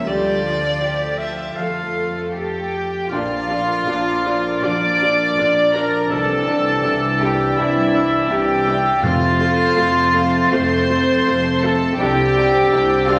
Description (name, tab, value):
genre	cinematic, emotional film score for orchestra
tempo	82 BPM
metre	4/4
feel	rubato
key	F major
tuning	A4 = 440 Hz
part	warm studio violin section	melody	0.0-13.2 s	A4 to D6	-29 LUFS	equal	none
part	warm violin	melody	0.0-2.4 s	D5 to F5	-27 LUFS	equal	none
part	clear oboe	second line	0.0-13.2 s	C5 to F5	-31 LUFS	equal	none
part	warm studio violin section	second line	0.0-13.2 s	E4 to D5	-25 LUFS	equal	none
part	dark studio viola section	accompaniment	0.0-13.2 s	F3 to G4	-30 LUFS	equal	none
part	concert harp	arpeggios	0.0-13.2 s	Bb2 to D6	-30 LUFS	equal	none
part	dark studio double bass section	bass	0.0-13.2 s	F1 to F2	-32 LUFS	equal	none
part	warm symphonic cello section	bass	0.0-13.2 s	F2 to A4	-34 LUFS	equal	none
part	mellow clarinet	second line	2.3-13.2 s	E4 to D5	-24 LUFS	equal	none
part	silver concert flute	second line	3.1-13.2 s	E6 to A6	-27 LUFS	equal	none
part	mellow French horn section	sustained chords	3.1-13.2 s	D3 to D4	-24 LUFS	equal	none
part	timpani	percussion	9.0-10.1 s	F2	-27 LUFS	equal	none
room	wet stone room reverb, RT60 1.3 s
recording	none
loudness	-18 LUFS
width	mono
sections	0.0-3.1 A section; 3.1-13.2 B section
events	none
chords	0.1 Dm; 1.6 Fadd9; 3.1 Bb; 6.1 Cadd9; 9.0 F; 12.0 Cadd9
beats	| 0.08 0.83 1.59 2.36 | 3.12 3.86 4.63 5.38 | 6.11 6.84 7.58 8.30 | 9.03 9.77 10.52 11.26 | 11.99 12.71